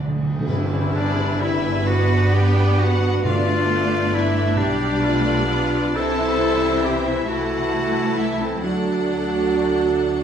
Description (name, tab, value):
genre	classical, slow romantic movement for symphony orchestra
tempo	44 BPM (dotted quarters)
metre	6/8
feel	uneven beats, rubato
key	G major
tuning	A4 = 440 Hz
part	clear studio cello section	bass	0.0-10.2 s	D3 to C4	-28 LUFS	right 3 dB	none
part	rich studio double bass section	bass	0.0-10.2 s	G1 to D2	-24 LUFS	right 1 dB	none
part	timpani	percussion	0.0-4.5 s	G2 to D3	-26 LUFS	right 1 dB	none
part	clear studio violin section	second line	0.5-10.2 s	A4 to A5	-30 LUFS	left 2 dB	none
part	clear studio viola section	accompaniment	0.5-10.2 s	E3 to G4	-27 LUFS	right 1 dB	none
part	mellow French horn section	sustained chords	0.5-10.2 s	G3 to F#4	-26 LUFS	right 1 dB	none
part	tam-tam	percussion	0.5-4.1 s	none	-34 LUFS	left 2 dB	none
part	bright clarinet	second line	0.9-10.2 s	C4 to A4	-23 LUFS	left 1 dB	none
part	warm studio violin section	melody	1.0-10.2 s	C5 to A5	-31 LUFS	left 2 dB	none
room	wet recital hall reverb, RT60 1.4 s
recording	none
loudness	-17 LUFS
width	side -8 dB against mid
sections	0.5-10.2 A section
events	timpani fill 0.0-0.5; band accent 0.5-1.4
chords	0.5 G; 3.2 G7; 5.9 C; 7.3 Am/C; 8.6 D